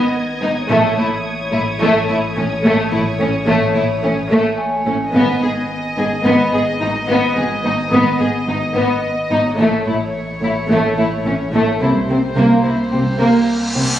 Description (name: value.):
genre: cinematic, suspense film score.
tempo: 54 BPM.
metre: 4/4.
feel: straight.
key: unclear.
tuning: A4 = 440 Hz.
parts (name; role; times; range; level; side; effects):
warm studio violin section; melody; 0.0-13.8 s; C5 to D#5; -24 LUFS; left 3 dB; none.
rich symphonic violin section; second line; 0.0-13.8 s; A3 to G#4; -19 LUFS; left 1 dB; none.
dark symphonic viola section; accompaniment; 0.0-13.8 s; A3 to B3; -20 LUFS; right 1 dB; none.
warm sub bass; drone; 0.0-14.0 s; G#1 to C2; -30 LUFS; equal; none.
dark studio violin section; texture; 0.0-4.6 s; D#6 to G#6; -28 LUFS; equal; none.
large celesta; texture; 0.0-11.8 s; G#5 to D#6; -26 LUFS; equal; none.
warm symphonic cello section; bass; 0.4-13.8 s; G#2 to C3; -23 LUFS; right 1 dB; none.
warm studio double bass section; bass; 0.7-13.0 s; G#1 to C2; -25 LUFS; right 2 dB; none.
reverse cymbal; sound effects; 13.1-14.0 s; none; -24 LUFS; equal; none.
room: wet concert hall reverb, RT60 2.2 s.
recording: recorded on a phone in the room, club reverb, compression.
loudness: -14 LUFS.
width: side -11 dB against mid.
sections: 0.0-14.0 A section.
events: reverse cymbal 13.1-14.0.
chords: 0.0 G#m; 0.7 A; 5.1 G#m; 9.6 A; 11.8 C7(no3).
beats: | 0.70 1.81 2.92 4.03 | 5.14 6.25 7.36 8.47 | 9.59 10.70 11.81 12.92.